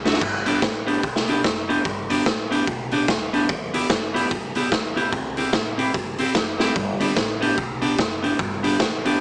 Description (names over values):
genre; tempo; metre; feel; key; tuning
ska; 147 BPM; 4/4; swing 61% on 8ths; G major; A4 = 440 Hz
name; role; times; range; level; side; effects
clean electric guitar; accompaniment; 0.0-9.2 s; A3 to G4; -24 LUFS; equal; dub echo
upright bass; bass; 0.0-9.1 s; Eb1 to G2; -36 LUFS; equal; none
raw garage drum kit; drums; 0.1-9.1 s; crash cymbal, hi-hat, kick drum, snare drum; -25 LUFS; equal; none
room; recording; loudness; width
light reverb; small speaker sound; -22 LUFS; mono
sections
0.2-9.2 A section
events
drum fill 0.0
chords
0.2 G; 3.5 Em; 5.1 C; 6.8 G